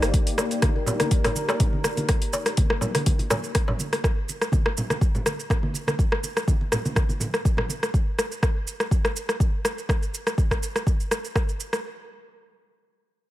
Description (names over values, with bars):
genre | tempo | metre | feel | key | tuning
afro house | 123 BPM | 4/4 | swing 54% on 16ths | C minor | A4 = 440 Hz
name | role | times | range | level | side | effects
dark analog pad | sustained chords | 0.0-4.0 s | Bb3 to D5 | -31 LUFS | left 2 dB | chorus, sidechain pumping
deep house drum kit | drums | 0.0-11.8 s | hi-hat, rim click, shaker | -26 LUFS | equal | overdrive
electronic kick drum | drums | 0.1-11.5 s | none | -22 LUFS | equal | overdrive
congas | percussion | 0.1-7.8 s | none | -30 LUFS | right 1 dB | none
darbuka | percussion | 0.4-3.8 s | none | -31 LUFS | left 1 dB | none
room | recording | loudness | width
digital ambience | none | -22 LUFS | side -15 dB against mid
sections
0.0-11.8 A section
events
none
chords
0.0 Cm9 (rootless)